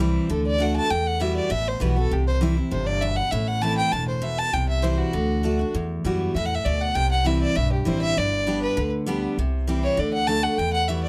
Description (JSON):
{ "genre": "bluegrass", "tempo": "198 BPM", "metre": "4/4", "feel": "straight", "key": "unclear", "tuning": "A4 = 440 Hz", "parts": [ { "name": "picked steel-string acoustic guitar", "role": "accompaniment", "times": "0.0-11.1 s", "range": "E2 to G4", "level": "-28 LUFS", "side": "equal", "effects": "none" }, { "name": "upright bass", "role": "bass", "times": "0.0-11.1 s", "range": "E1 to F#2", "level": "-28 LUFS", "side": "equal", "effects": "none" }, { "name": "dark fiddle", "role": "melody", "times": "0.3-11.1 s", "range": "F#4 to A5", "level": "-28 LUFS", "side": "equal", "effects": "none" } ], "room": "light reverb", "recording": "close, detailed microphones", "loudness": "-23 LUFS", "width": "mono", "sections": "0.0-9.4 A section; 9.4-11.1 A section", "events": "fiddle solo 0.0-11.1", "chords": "0.3 D; 0.9 Emadd9; 2.1 C; 3.3 Am; 4.5 C; 5.1 D; 5.7 Emadd9; 7.0 C; 8.2 G; 9.4 C; 10.0 D; 10.6 Emadd9" }